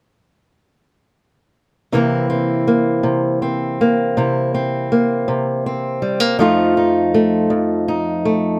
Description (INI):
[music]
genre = acoustic country blues, solo or duo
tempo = 54 BPM (dotted quarters)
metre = 12/8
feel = straight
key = C mixolydian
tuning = A4 = 441 Hz
[part]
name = fingerpicked old ladder-braced acoustic guitar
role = solo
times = 1.9-8.6 s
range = F2 to F4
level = -17 LUFS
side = equal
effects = none
[sound]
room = light reverb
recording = none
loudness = -18 LUFS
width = mono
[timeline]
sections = 1.9-8.6 A section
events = none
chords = 1.9 C7; 6.4 F7